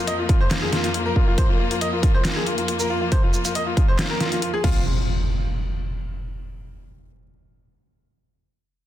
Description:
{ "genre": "heavy wobble dubstep", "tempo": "138 BPM", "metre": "4/4", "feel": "half-time", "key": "unclear", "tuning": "A4 = 441 Hz", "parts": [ { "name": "bright concert grand piano", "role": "melody", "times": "0.0-4.8 s", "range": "F4 to Eb5", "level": "-26 LUFS", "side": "left 1 dB", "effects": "ping-pong delay" }, { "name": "bright studio string section", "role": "sustained chords", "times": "0.0-4.8 s", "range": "F2 to C5", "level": "-27 LUFS", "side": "left 2 dB", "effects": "sidechain pumping" }, { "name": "dubstep drum kit", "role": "drums", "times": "0.1-4.7 s", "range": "crash cymbal, handclaps, hi-hat, shaker, snare drum", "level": "-26 LUFS", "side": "equal", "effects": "none" }, { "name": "electronic kick drum", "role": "drums", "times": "0.3-4.7 s", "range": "none", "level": "-19 LUFS", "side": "equal", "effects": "none" }, { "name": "impact", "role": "sound effects", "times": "4.6-6.4 s", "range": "none", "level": "-25 LUFS", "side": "equal", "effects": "none" } ], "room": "light reverb", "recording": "dense, heavily limited modern master", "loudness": "-19 LUFS", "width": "side -12 dB against mid", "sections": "0.0-4.9 A section; 4.9-6.6 B section", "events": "none", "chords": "0.0 F5; 4.9 N.C.", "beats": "0.07 0.51 0.94 | 1.38 1.81 2.25 2.68 | 3.12 3.55 3.99 4.42 | 4.86 5.29 5.73 6.16" }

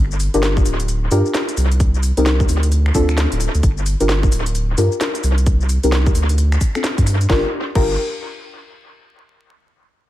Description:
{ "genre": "UK garage, two-step garage", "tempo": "131 BPM", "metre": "4/4", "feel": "swing 62% on 16ths", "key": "G minor", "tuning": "A4 = 440 Hz", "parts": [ { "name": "saturated sub bass", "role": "bass", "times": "0.0-8.0 s", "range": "D1 to G2", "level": "-17 LUFS", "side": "equal", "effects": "none" }, { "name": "garage drum kit", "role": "drums", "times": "0.1-7.9 s", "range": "crash cymbal, finger snaps, hi-hat, shaker, snare drum", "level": "-24 LUFS", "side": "equal", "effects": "dub echo" }, { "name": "deep mellow chord stab", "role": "stabs", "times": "0.3-7.9 s", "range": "C4 to Bb4", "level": "-21 LUFS", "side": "left 1 dB", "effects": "chorus, cassette tape, tape echo" }, { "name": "electronic kick drum", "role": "drums", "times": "0.6-7.9 s", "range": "none", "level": "-17 LUFS", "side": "equal", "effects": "none" } ], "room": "little or no reverb", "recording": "echo-heavy mix, vinyl crackle", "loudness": "-15 LUFS", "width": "side -14 dB against mid", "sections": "0.0-7.3 A section; 7.3-9.1 B section", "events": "filter sweep on synth stab 0.0-7.3", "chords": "0.0 Gm7; 1.8 Cm7; 2.7 Dm7; 3.6 Gm7; 5.5 Cm7; 6.4 Dm7; 7.3 Gm7", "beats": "0.43 0.89 1.34 | 1.80 2.26 2.72 3.17 | 3.63 4.09 4.55 5.01 | 5.46 5.92 6.38 6.84 | 7.30 7.75" }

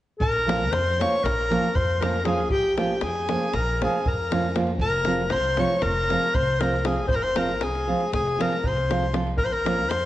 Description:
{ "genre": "balkan folk, Balkan wedding band", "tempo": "236 BPM (eighths)", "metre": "9/8", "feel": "straight", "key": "Bb minor", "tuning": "A4 = 440 Hz", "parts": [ { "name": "warm clarinet", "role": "melody", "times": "0.2-10.1 s", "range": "G4 to Db5", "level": "-25 LUFS", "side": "left 2 dB", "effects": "none" }, { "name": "bright fiddle", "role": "second line", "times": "0.2-10.1 s", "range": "G5 to Db6", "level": "-31 LUFS", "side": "equal", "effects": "tape echo" }, { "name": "upright bass", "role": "bass", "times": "0.2-10.1 s", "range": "F1 to F2", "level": "-29 LUFS", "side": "equal", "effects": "none" }, { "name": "davul", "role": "percussion", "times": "0.2-10.0 s", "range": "none", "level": "-30 LUFS", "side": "left 1 dB", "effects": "none" }, { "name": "nylon-string guitar", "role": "accompaniment", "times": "0.5-9.8 s", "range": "F3 to F4", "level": "-27 LUFS", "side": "right 3 dB", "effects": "none" } ], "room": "moderate recital hall reverb, RT60 1.5 s", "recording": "worn, warbling old tape, cassette tape, warbly pitch drift, nothing above 10.4 kHz", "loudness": "-21 LUFS", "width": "side -14 dB against mid", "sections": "0.2-10.1 A section", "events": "none", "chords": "0.2 Bbm; 4.8 Fm; 9.4 Bbm", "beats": "| 0.21 0.47 0.72 0.98 1.23 1.49 1.74 2.00 2.25 | 2.51 2.76 3.02 3.27 3.53 3.78 4.04 4.29 4.54 | 4.80 5.05 5.31 5.56 5.82 6.07 6.33 6.58 6.84 | 7.09 7.34 7.60 7.85 8.11 8.36 8.62 8.87 9.13 | 9.38 9.63 9.89" }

